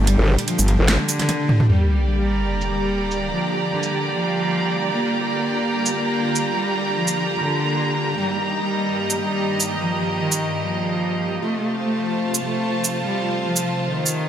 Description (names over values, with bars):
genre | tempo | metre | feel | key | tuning
heavy wobble dubstep | 148 BPM | 4/4 | swing 54% on 16ths, half-time | G minor | A4 = 441 Hz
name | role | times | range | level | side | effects
supersaw chords | sustained chords | 0.0-14.3 s | G2 to G4 | -27 LUFS | equal | phaser
metallic wobble bass | bass | 0.0-0.8 s | G1 | -16 LUFS | equal | chorus, overdrive
dark chamber string section | texture | 0.0-14.3 s | F4 to Bb5 | -25 LUFS | right 2 dB | none
dark cello | melody | 0.1-14.3 s | D3 to Bb3 | -24 LUFS | equal | ping-pong delay
dubstep drum kit | drums | 0.1-14.1 s | hi-hat, shaker, snare drum, toms | -20 LUFS | right 1 dB | low-pass filter on hats, small room ambience, low-pass filter on snare, low-pass filter on perc, low-pass filter on toms
growl bass | bass | 0.2-1.0 s | G1 | -16 LUFS | equal | chorus, overdrive
sub drop | sound effects | 1.7-3.3 s | none | -21 LUFS | equal | none
room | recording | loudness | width
moderate lush hall reverb, RT60 2.1 s | none | -19 LUFS | side -9 dB against mid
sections
0.0-1.7 A section; 1.7-14.3 B section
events
drop 0.0-1.7; drum fill 0.9-1.7; impact 1.7-3.3; filter sweep on drum 1.7-14.3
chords
0.0 Gmadd9; 1.7 Gm; 8.2 Eb/G; 11.4 F